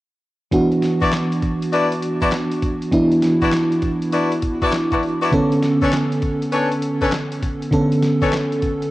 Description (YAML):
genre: R&B, new jack swing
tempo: 100 BPM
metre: 4/4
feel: swing 65% on 16ths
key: D major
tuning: A4 = 440 Hz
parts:
  - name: FM electric piano with soft pad layer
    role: accompaniment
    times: 0.5-8.9 s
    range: D3 to A4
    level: -18 LUFS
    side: right 1 dB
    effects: chorus, tremolo
  - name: dusty soul sampler-style drum kit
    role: drums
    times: 0.5-8.9 s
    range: handclaps, hi-hat, kick drum, snare drum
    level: -26 LUFS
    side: equal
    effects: none
  - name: warm horn section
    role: stabs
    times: 1.0-8.3 s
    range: C#4 to D5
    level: -22 LUFS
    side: left 2 dB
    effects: none
room: moderate spring reverb, RT60 2.4 s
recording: home recording on cassette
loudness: -16 LUFS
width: side -17 dB against mid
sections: 0.5-8.9 A section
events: none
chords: 0.5 D69; 5.3 Bm9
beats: | 0.53 1.12 1.73 2.33 | 2.92 3.52 4.12 4.72 | 5.33 5.92 6.53 7.12 | 7.72 8.32